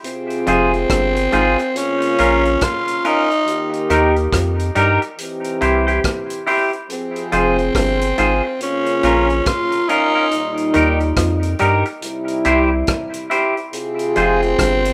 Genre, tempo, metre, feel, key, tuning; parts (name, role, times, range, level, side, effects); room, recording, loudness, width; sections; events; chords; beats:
roots reggae; 70 BPM; 4/4; swing 61% on 16ths; F minor; A4 = 439 Hz
muted trombone section; second line; 0.0-14.9 s; Bb2 to Ab4; -24 LUFS; equal; tape echo
vintage drum kit; drums; 0.0-14.9 s; hi-hat, kick drum, rim click; -27 LUFS; equal
breathy tenor saxophone; melody; 0.1-14.9 s; C4 to F4; -22 LUFS; equal; tape echo
clean electric guitar; accompaniment; 0.5-14.4 s; Db4 to C5; -22 LUFS; equal; spring reverb, tape echo
muted clav; riff; 0.5-14.8 s; F2 to G3; -27 LUFS; equal
soft dub sub bass; bass; 0.5-14.9 s; F1 to G2; -23 LUFS; equal
studio reverb; rough home demo mix; -17 LUFS; mono
0.0-14.9 A section
0.0 Fm; 1.8 Bbm; 3.5 Eb; 5.2 C; 6.9 Fm; 8.6 Bbm; 10.3 Eb; 12.0 C; 13.7 Fm
| 0.04 0.90 1.75 2.61 | 3.47 4.32 5.18 6.04 | 6.89 7.75 8.60 9.46 | 10.31 11.17 12.03 12.88 | 13.74 14.59